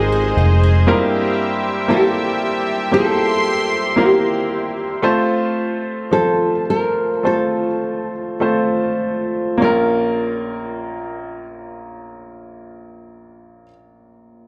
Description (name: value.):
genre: pop.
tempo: 50-59 BPM.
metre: 4/4.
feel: straight.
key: unclear.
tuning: A4 = 439 Hz.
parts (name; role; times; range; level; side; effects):
nylon-string guitar; melody; 0.0-13.7 s; G4 to Bb4; -22 LUFS; equal; slapback echo, delay.
warm baby grand piano; accompaniment; 0.0-14.5 s; Bb1 to Eb5; -22 LUFS; equal; slapback echo.
lush unison pad; sustained chords; 0.0-5.0 s; G4 to C6; -24 LUFS; equal; chorus.
picked steel-string acoustic guitar; arpeggios; 0.0-1.5 s; Ab2 to Ab4; -29 LUFS; equal; slapback echo.
vintage muted fingered electric bass; bass; 0.0-0.8 s; F1 to Ab1; -16 LUFS; equal; none.
room: light reverb, studio ambience.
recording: live gig heard through the venue's PA, club reverb.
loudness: -18 LUFS.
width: mono.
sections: 0.0-9.6 A section; 9.6-14.4 B section.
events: slowing down 0.9-9.6.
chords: 0.0 Ab; 0.9 C7/G; 5.0 F; 9.6 Bbm.